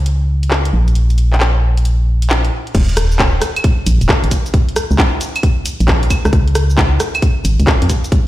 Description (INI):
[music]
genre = UK garage, two-step garage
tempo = 134 BPM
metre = 4/4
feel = swing 66% on 16ths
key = unclear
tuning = A4 = 440 Hz
[part]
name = organ-like FM bass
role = bass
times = 0.0-7.9 s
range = Eb1 to F2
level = -13 LUFS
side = equal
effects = sidechain pumping
[part]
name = garage drum kit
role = drums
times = 0.1-8.2 s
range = cabasa, claves, crash cymbal, handclaps, hi-hat, rim click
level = -18 LUFS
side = equal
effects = none
[part]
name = electronic kick drum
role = drums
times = 2.7-8.2 s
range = none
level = -14 LUFS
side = equal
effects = none
[sound]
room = light reverb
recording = played on a big sound system in a bare room, stone room reverb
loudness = -12 LUFS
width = side -15 dB against mid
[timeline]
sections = 0.0-2.7 A section; 2.7-8.3 B section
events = drop 2.7-8.3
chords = none